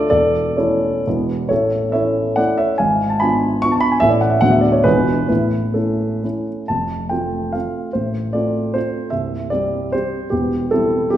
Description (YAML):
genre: classical, romantic triple-time dance for piano with dotted rhythms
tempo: 121-166 BPM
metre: 3/4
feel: rubato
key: A major, F major from 6.7 s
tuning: A4 = 442 Hz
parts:
  - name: dark grand piano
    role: solo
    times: 0.0-11.2 s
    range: C1 to C#6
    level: -16 LUFS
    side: equal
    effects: none
room: wet recital hall reverb, RT60 1.5 s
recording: recorded in a church or concert hall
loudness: -16 LUFS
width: side -11 dB against mid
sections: 0.0-6.7 A section; 6.7-11.2 B section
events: none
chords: 0.1 A/E; 1.1 E; 1.5 A; 2.8 G#dim7; 4.0 A; 4.4 Bm/D; 4.9 E7b9; 5.3 A; 6.7 F; 7.9 F/A; 9.1 C; 10.3 C/E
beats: | 0.11 0.58 1.06 | 1.51 1.94 2.38 | 2.79 3.21 3.63 | 4.02 4.42 4.86 | 5.30 5.76 6.24 | 6.69 7.11 7.55 | 7.95 8.35 8.76 | 9.13 9.52 9.93 | 10.32 10.72 11.12